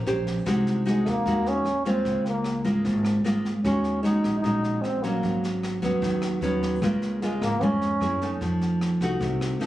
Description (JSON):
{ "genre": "bossa nova", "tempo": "151 BPM", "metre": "4/4", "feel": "straight", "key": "Db major", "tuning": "A4 = 440 Hz", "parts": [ { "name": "nylon-string guitar", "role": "accompaniment", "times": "0.0-9.7 s", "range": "Ab2 to C5", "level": "-25 LUFS", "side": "equal", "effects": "none" }, { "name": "upright bass", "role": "bass", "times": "0.0-9.7 s", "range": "Ab1 to Gb2", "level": "-31 LUFS", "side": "right 1 dB", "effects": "none" }, { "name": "jazz brush drum kit", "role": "drums", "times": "0.1-9.7 s", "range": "kick drum, rim click, snare drum", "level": "-37 LUFS", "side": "equal", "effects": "none" }, { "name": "warm trombone", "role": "melody", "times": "0.9-8.4 s", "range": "Ab3 to Eb4", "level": "-26 LUFS", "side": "right 1 dB", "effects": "none" } ], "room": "light reverb", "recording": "recorded on a phone in the room, club reverb, compression", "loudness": "-22 LUFS", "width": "side -14 dB against mid", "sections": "0.0-9.7 A section", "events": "none", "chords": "0.5 Ab7/C; 2.1 Db6; 3.6 Ebm7; 5.2 Abm7; 6.8 Db6; 8.0 Gb9; 8.4 F7b9", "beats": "0.07 | 0.47 0.86 1.26 1.66 | 2.05 2.45 2.85 3.25 | 3.64 4.04 4.44 4.83 | 5.23 5.63 6.03 6.42 | 6.82 7.22 7.62 8.01 | 8.41 8.81 9.20 9.60" }